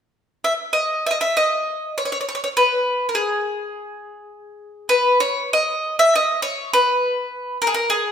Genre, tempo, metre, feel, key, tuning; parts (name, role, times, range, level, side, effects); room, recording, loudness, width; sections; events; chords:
fado; 101 BPM; 4/4; uneven beats, rubato; G# minor; A4 = 440 Hz
bowl-back mandolin; solo; 0.4-8.1 s; G#4 to E5; -18 LUFS; equal
moderate recital hall reverb, RT60 1.4 s; minimal, uncompressed stereo recording; -18 LUFS; side -8 dB against mid
0.7-5.5 A section; 5.5-8.1 B section